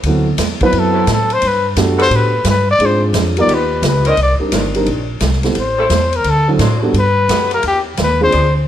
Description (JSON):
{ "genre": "jazz, big band swing", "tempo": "174 BPM", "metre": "4/4", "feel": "swing 65% on 8ths", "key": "G major", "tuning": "A4 = 441 Hz", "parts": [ { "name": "upright bass", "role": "bass", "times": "0.0-8.7 s", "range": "G1 to A2", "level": "-17 LUFS", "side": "equal", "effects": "none" }, { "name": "swinging big-band drum kit", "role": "drums", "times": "0.0-8.4 s", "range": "hi-hat, kick drum, ride cymbal, snare drum", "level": "-21 LUFS", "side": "right 2 dB", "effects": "none" }, { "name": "dark baby grand piano", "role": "accompaniment", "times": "0.1-8.3 s", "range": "F#3 to B4", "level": "-18 LUFS", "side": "right 2 dB", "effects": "none" }, { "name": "warm trumpet", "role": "melody", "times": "0.7-8.5 s", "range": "G4 to D#5", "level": "-15 LUFS", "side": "left 2 dB", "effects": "none" }, { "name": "dark saxophone section", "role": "sustained chords", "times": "0.9-8.5 s", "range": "D#3 to C5", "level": "-22 LUFS", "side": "equal", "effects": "none" } ], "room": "light reverb", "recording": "none", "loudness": "-12 LUFS", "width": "side -11 dB against mid", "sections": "0.0-4.2 A section; 4.2-8.7 A section", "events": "trumpet solo 0.0-8.7", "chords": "0.0 D13; 1.4 Gmaj9; 2.8 Dm7b5; 3.5 G7alt; 4.2 Cm9; 5.6 Am7; 6.3 D9; 6.9 Gmaj9" }